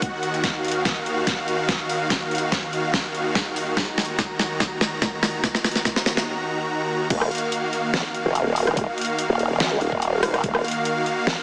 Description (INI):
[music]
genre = heavy wobble dubstep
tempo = 144 BPM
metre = 4/4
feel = swing 53% on 16ths, half-time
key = Eb minor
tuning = A4 = 440 Hz
[part]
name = supersaw chords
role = sustained chords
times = 0.0-11.4 s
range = Eb2 to Bb5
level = -24 LUFS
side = equal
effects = sidechain pumping
[part]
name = dubstep drum kit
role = drums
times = 0.0-11.4 s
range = crash cymbal, hi-hat, rim click, snare drum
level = -23 LUFS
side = equal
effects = overdrive
[part]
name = electronic kick drum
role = drums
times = 0.0-10.5 s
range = none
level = -29 LUFS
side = equal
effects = none
[part]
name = formant-sweep wobble bass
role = bass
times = 7.1-11.4 s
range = Eb1 to Db2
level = -22 LUFS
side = equal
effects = chorus, overdrive
[sound]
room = moderate plate reverb, RT60 1.1 s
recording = heavily compressed radio sound, multiband compression, small speaker sound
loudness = -20 LUFS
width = side -28 dB against mid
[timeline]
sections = 0.0-7.1 A section; 7.1-11.4 B section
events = build-up 0.0-7.1; drum fill 0.4-6.3; break 6.3-7.1; drop 7.1-11.4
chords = 0.0 Ebmadd9